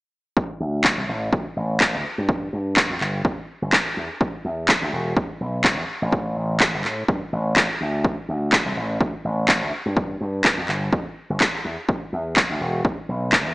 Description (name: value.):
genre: filtered disco house.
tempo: 125 BPM.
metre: 4/4.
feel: swing 55% on 16ths.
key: unclear.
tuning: A4 = 438 Hz.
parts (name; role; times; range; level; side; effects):
electronic kick drum; drums; 0.4-13.4 s; none; -22 LUFS; equal; none.
slap bass with an envelope filter; bass; 0.6-13.5 s; E1 to A2; -25 LUFS; equal; tube saturation, sidechain pumping, low-pass filter.
electronic handclaps; drums; 0.8-13.4 s; none; -20 LUFS; equal; overdrive.
room: moderate lush hall reverb, RT60 1.7 s.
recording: dreamy mix soaked in reverb, small speaker sound.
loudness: -20 LUFS.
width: side -22 dB against mid.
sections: 0.4-13.5 A section.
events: filter sweep on slap bass 0.4-13.5.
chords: none.